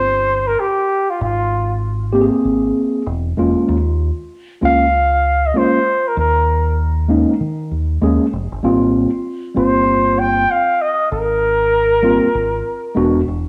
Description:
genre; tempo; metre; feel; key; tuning
hip hop, jazz-hop; 97 BPM; 4/4; swing 59% on 16ths; Ab major; A4 = 442 Hz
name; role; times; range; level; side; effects
breathy flugelhorn; melody; 0.0-13.2 s; F4 to G5; -18 LUFS; equal; none
deep dub fingered electric bass; bass; 0.0-13.4 s; E1 to Eb3; -22 LUFS; equal; none
mellow tine electric piano; accompaniment; 2.1-13.2 s; G3 to Ab4; -19 LUFS; equal; cassette tape
room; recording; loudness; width
wet spring reverb, RT60 2.0 s, studio ambience; home recording on cassette, small room ambience; -16 LUFS; mono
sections
0.0-13.5 A section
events
none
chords
0.0 Abmaj13; 3.1 E; 3.7 Eb9sus4; 8.6 Abmaj13; 13.0 E9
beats
0.59 | 1.21 1.83 2.45 3.07 | 3.69 4.30 4.92 5.54 | 6.16 6.78 7.40 8.02 | 8.63 9.25 9.87 10.49 | 11.11 11.73 12.35 12.96

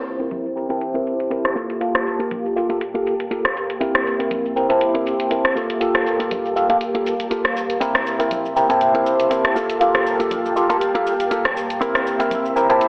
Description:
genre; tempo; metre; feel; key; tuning
filtered disco house; 120 BPM; 4/4; swing 55% on 16ths; G dorian; A4 = 443 Hz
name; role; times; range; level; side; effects
barky tine electric piano; accompaniment; 0.0-12.9 s; Bb3 to A5; -22 LUFS; equal; phaser, vintage 12-bit sampler grit, low-pass filter
string machine, full ensemble; sustained chords; 0.0-12.9 s; Bb3 to C6; -28 LUFS; equal; ensemble chorus, low-pass filter
house drum kit; drums; 0.1-12.9 s; hi-hat, rim click, shaker; -25 LUFS; equal; overdrive, low-pass filter on hats, low-pass filter on perc, low-pass filter on snare, low-pass filter on room
direct-recorded clean electric guitar; riff; 0.2-12.8 s; Bb3 to Bb4; -27 LUFS; equal; low-pass filter
tambourine and congas; percussion; 0.2-12.9 s; none; -42 LUFS; equal; low-pass filter on perc
room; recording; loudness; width
wet echo chamber reverb, RT60 1.3 s; heavily compressed radio sound, telephone sound; -20 LUFS; mono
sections
0.0-12.9 A section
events
filter sweep on drum 0.0-12.9; filter sweep 0.0-12.9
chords
0.0 C7; 1.6 Gm9; 3.8 C7; 5.6 Gm9; 7.8 C7; 9.6 Gm9; 11.8 C7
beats
0.31 0.81 1.31 | 1.81 2.31 2.81 3.31 | 3.81 4.31 4.81 5.31 | 5.81 6.31 6.81 7.31 | 7.81 8.31 8.81 9.31 | 9.81 10.31 10.81 11.31 | 11.81 12.31 12.81

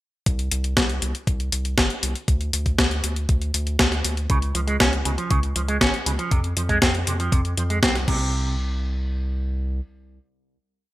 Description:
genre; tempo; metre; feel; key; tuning
italo disco; 119 BPM; 4/4; straight; unclear; A4 = 441 Hz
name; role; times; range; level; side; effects
round analog bass; bass; 0.3-9.8 s; G1 to F2; -25 LUFS; equal; tube saturation
clean 12-bit digital drum machine; drums; 0.3-8.2 s; crash cymbal, hi-hat, snare drum; -23 LUFS; left 1 dB; gated reverb
electronic kick drum; drums; 0.3-8.2 s; none; -22 LUFS; equal; none
electric guitar with an envelope filter; arpeggios; 4.3-8.5 s; C3 to Db4; -26 LUFS; right 2 dB; digital delay
room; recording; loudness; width
light reverb; bright 1980s-style digital production; -20 LUFS; side -16 dB against mid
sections
0.3-8.3 verse; 8.3-10.9 final hit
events
none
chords
0.3 C5; 2.3 N.C.; 4.3 Db; 6.3 F5; 8.1 N.C.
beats
| 0.26 0.77 1.27 1.77 | 2.28 2.78 3.29 3.79 | 4.30 4.80 5.30 5.81 | 6.31 6.82 7.32 7.83 | 8.33 8.83 9.34

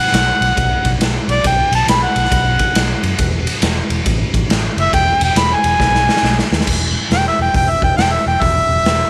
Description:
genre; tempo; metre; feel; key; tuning
blues rock power trio and southern rock; 138 BPM; 4/4; swing 64% on 8ths; unclear; A4 = 440 Hz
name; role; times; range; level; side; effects
clear harmonica; melody; 0.0-9.1 s; D5 to B5; -18 LUFS; equal; overdrive, tape echo
vintage muted fingered electric bass; bass; 0.1-9.0 s; E1 to F#2; -22 LUFS; equal; none
raw garage drum kit; drums; 0.1-9.0 s; crash cymbal, hi-hat, kick drum, ride cymbal, snare drum; -19 LUFS; equal; none
room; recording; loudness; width
light reverb, small room ambience; none; -15 LUFS; mono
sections
0.0-6.7 A section; 6.7-9.1 A section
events
harmonica solo 0.0-6.7, 6.7-9.1; drum fill 5.8-6.7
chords
0.0 B5; 3.2 N.C.; 4.9 Em; 5.8 N.C.; 6.7 E5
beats
0.14 0.57 1.01 | 1.45 1.88 2.32 2.75 | 3.19 3.63 4.06 4.50 | 4.93 5.37 5.80 6.24 | 6.68 7.11 7.55 7.98 | 8.42 8.86

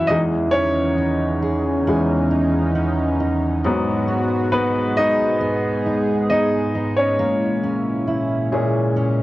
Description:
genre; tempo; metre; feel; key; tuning
pop ballad; 68 BPM; 4/4; straight; G# minor; A4 = 440 Hz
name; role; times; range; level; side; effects
bright concert grand piano; accompaniment; 0.0-9.2 s; E2 to F#5; -21 LUFS; left 1 dB; cassette tape
chorused pulse-width pad; sustained chords; 0.0-9.2 s; E2 to D#5; -21 LUFS; equal; cassette tape
fingerpicked steel-string acoustic guitar; arpeggios; 0.0-9.2 s; G#2 to B4; -25 LUFS; right 2 dB; cassette tape, analog delay
room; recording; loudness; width
moderate studio reverb, RT60 0.6 s; home recording on cassette; -17 LUFS; side -17 dB against mid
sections
0.0-9.2 A section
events
grand piano solo 0.0-9.2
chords
0.1 C#madd9/E; 3.6 G#m7; 7.2 A#m7b5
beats
| 0.09 0.98 1.87 2.76 | 3.64 4.53 5.41 6.30 | 7.19 8.08 8.97

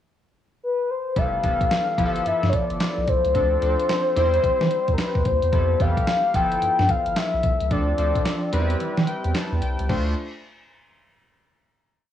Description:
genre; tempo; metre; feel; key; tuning
R&B, new jack swing; 110 BPM; 4/4; swing 63% on 16ths; D dorian; A4 = 436 Hz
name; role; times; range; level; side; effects
mellow horn-like synth lead; melody; 0.6-8.8 s; Bb4 to G5; -22 LUFS; left 3 dB; chorus, cassette tape, analog delay
warm analog keys; accompaniment; 1.2-10.1 s; E3 to A5; -28 LUFS; equal; chorus, cassette tape
round analog bass; bass; 1.2-10.1 s; F1 to E3; -24 LUFS; right 1 dB; none
crisp 8-bit digital drum machine; drums; 1.2-10.1 s; crash cymbal, handclaps, hi-hat, kick drum, snare drum; -26 LUFS; equal; cassette tape
room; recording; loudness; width
light reverb, digital ambience; home recording on cassette; -20 LUFS; side -10 dB against mid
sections
0.0-1.2 pickup bar; 1.2-9.9 verse; 9.9-12.1 final chord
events
kick muted 8.8-9.9; synth keys fill 8.8-9.9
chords
0.0 N.C.; 1.2 Fmaj9#11; 2.0 G13; 3.3 Dm7; 4.2 C/E; 5.5 Fmaj9#11; 6.3 G13; 7.7 Dm7; 8.5 Cmaj7/E; 9.9 Dm7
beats
0.07 0.62 | 1.17 1.71 2.26 2.80 | 3.35 3.89 4.44 4.98 | 5.53 6.07 6.62 7.17 | 7.71 8.26 8.80 9.35 | 9.89

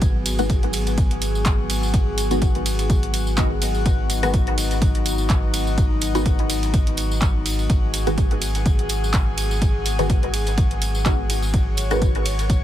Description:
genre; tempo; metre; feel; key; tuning
dub techno; 125 BPM; 4/4; swing 55% on 16ths; G# minor; A4 = 440 Hz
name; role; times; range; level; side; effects
airy breathy pad; sustained chords; 0.0-12.6 s; F#3 to C#5; -29 LUFS; equal; chorus, sidechain pumping
warm sub bass; bass; 0.0-12.6 s; G#1; -24 LUFS; equal; sidechain pumping
electronic kick drum; drums; 0.0-12.6 s; none; -20 LUFS; equal; none
punchy analog drum machine; drums; 0.0-12.6 s; handclaps, hi-hat, ride cymbal; -30 LUFS; right 2 dB; none
tambourine; percussion; 0.0-12.6 s; none; -32 LUFS; equal; none
drifting glass-harmonics texture; texture; 0.0-12.6 s; F#4; -33 LUFS; left 11 dB; chorus, built-in reverb, sidechain pumping
filtered dub chord stab; stabs; 0.4-12.1 s; D#3 to F#4; -27 LUFS; left 1 dB; phaser, sidechain pumping, dub echo
room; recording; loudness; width
digital ambience; none; -18 LUFS; side -12 dB against mid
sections
0.0-12.6 A section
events
none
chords
0.0 G#m7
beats
| 0.02 0.50 0.98 1.46 | 1.94 2.42 2.90 3.38 | 3.86 4.34 4.82 5.30 | 5.78 6.26 6.74 7.22 | 7.70 8.18 8.66 9.14 | 9.62 10.10 10.58 11.06 | 11.54 12.02 12.50

